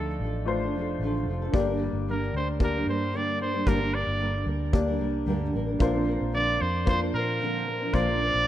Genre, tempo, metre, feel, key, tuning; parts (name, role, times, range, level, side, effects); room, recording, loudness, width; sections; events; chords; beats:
acoustic pop; 112 BPM; 4/4; straight; G minor; A4 = 439 Hz
bright trumpet; melody; 0.0-8.5 s; A4 to D5; -28 LUFS; right 1 dB
nylon-string guitar; accompaniment; 0.0-8.5 s; G2 to Bb4; -31 LUFS; right 2 dB; double-tracked left and right
warm upright piano; accompaniment; 0.0-8.5 s; A3 to D5; -31 LUFS; left 4 dB
vintage muted fingered electric bass; bass; 0.0-8.5 s; F1 to Bb2; -30 LUFS; equal
kick drum; drums; 1.5-8.1 s; -26 LUFS; equal
light reverb, studio ambience; rough home demo mix; -24 LUFS; side -12 dB against mid
0.0-8.5 A section
0.0 Dm; 1.5 Gm; 5.8 Bbadd9
0.47 1.00 | 1.53 2.07 2.60 3.13 | 3.67 4.20 4.74 5.27 | 5.80 6.34 6.87 7.40 | 7.94 8.47